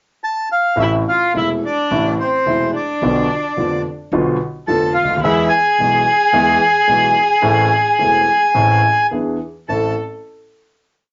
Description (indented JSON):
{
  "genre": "tango",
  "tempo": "108 BPM",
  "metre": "4/4",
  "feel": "rubato",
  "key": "A harmonic minor",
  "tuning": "A4 = 441 Hz",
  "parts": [
    { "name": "bandoneon", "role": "melody", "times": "0.2-9.9 s", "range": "C5 to A5", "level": "-18 LUFS", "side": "equal", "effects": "none" },
    { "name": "warm violin", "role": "second line", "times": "0.8-9.9 s", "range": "C4 to A4", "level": "-23 LUFS", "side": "equal", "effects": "none" },
    { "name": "warm concert grand piano", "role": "accompaniment", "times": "0.8-9.9 s", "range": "E1 to A4", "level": "-21 LUFS", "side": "equal", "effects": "none" },
    { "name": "upright bass", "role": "bass", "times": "0.8-9.9 s", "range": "E1 to E2", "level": "-34 LUFS", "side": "equal", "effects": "none" }
  ],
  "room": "wet small room reverb, RT60 0.5 s",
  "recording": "nothing above 7.6 kHz",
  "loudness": "-16 LUFS",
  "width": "mono",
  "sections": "0.0-0.8 pickup bar; 0.8-9.7 A section; 9.7-11.1 final chord",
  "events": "none",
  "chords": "0.0 N.C.; 0.8 Am; 3.0 Bdim; 5.2 E; 7.4 Am; 9.1 E7; 9.7 Am"
}